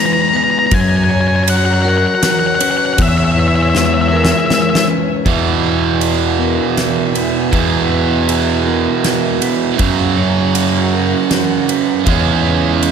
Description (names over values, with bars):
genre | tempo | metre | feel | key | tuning
post-rock | 79 BPM | 3/4 | straight | E lydian | A4 = 442 Hz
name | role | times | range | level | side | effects
octave-fuzz lead guitar | melody | 0.0-4.8 s | E5 to A#5 | -16 LUFS | left 3 dB | distortion, digital delay
rich symphonic string section | sustained chords | 0.0-12.9 s | E3 to A#5 | -25 LUFS | left 4 dB | none
electric guitar through a small old amp | arpeggios | 0.0-12.9 s | E3 to G#4 | -22 LUFS | left 6 dB | digital delay
vibraphone with hard mallets | arpeggios | 0.0-12.9 s | A#4 to C#5 | -24 LUFS | equal | digital delay
fuzz fingered electric bass | bass | 0.7-12.9 s | E2 to F#2 | -16 LUFS | equal | overdrive
huge arena drum kit | drums | 0.7-12.9 s | kick drum, ride cymbal, snare drum | -19 LUFS | equal | none
distorted electric guitar | riff | 5.3-12.9 s | E2 to C#4 | -15 LUFS | right 12 dB | overdrive
room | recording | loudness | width
light reverb, small room ambience | none | -12 LUFS | side -7 dB against mid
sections
0.0-5.2 A section; 5.2-12.9 B section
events
drum fill 3.7-5.2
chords
0.0 E; 0.7 F#; 3.0 C#m/E; 5.2 E; 9.8 F#; 12.1 C#m/E